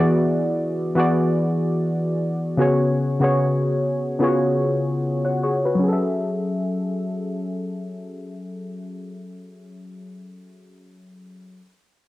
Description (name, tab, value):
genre	R&B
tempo	74 BPM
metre	4/4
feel	swing 54% on 16ths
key	F# minor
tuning	A4 = 440 Hz
part	warm analog keys	accompaniment	0.0-11.6 s	C#3 to F#5	-20 LUFS	equal	chorus, low-pass filter, cassette tape
room	moderate spring reverb, RT60 1.2 s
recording	home recording on cassette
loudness	-19 LUFS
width	side -16 dB against mid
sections	0.0-5.8 A section; 5.8-9.1 B section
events	filter sweep on synth keys 0.0-5.8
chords	0.0 E7; 2.6 C#7sus4; 5.8 F#m9